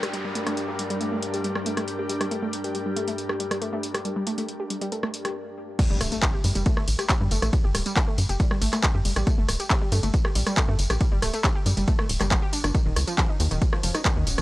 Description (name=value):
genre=driving peak-time techno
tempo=138 BPM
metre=4/4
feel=straight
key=G harmonic minor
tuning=A4 = 440 Hz
part: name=warbly dusty pluck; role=riff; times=0.0-14.4 s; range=Eb3 to G4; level=-30 LUFS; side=equal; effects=chorus, overdrive, sidechain pumping, analog delay
part: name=overtone-sweeping drone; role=drone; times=0.0-5.4 s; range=G2 to G3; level=-37 LUFS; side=left 1 dB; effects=chorus, built-in reverb, sidechain pumping
part: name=techno drum kit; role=drums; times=0.0-14.4 s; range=crash cymbal, handclaps, hi-hat, ride cymbal, rim click, tambourine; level=-28 LUFS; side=equal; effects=sidechain pumping on hats, sidechain pumping on cymbals, sidechain pumping on perc
part: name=downlifter and impact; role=sound effects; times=0.0-2.3, 5.8-7.5 s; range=none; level=-37 LUFS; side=equal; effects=none
part: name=ethereal airy pad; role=texture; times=0.0-5.4, 13.1-14.4 s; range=C#4 to Bb4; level=-33 LUFS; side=left 1 dB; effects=ensemble chorus, built-in reverb, sidechain pumping
part: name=electronic kick drum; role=drums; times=5.8-14.1 s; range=none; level=-24 LUFS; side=equal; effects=none
part: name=tight sequencer bass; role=bass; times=5.9-14.4 s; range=D1 to G2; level=-25 LUFS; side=equal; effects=sidechain pumping
room=little or no reverb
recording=dry, gritty hardware recording, cassette tape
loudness=-22 LUFS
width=side -18 dB against mid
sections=0.0-5.8 A section; 5.8-14.4 B section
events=stop 5.4-5.8; drop 5.8-14.4; impact 5.8-7.5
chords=0.0 Gm; 5.8 N.C.; 12.7 Ebm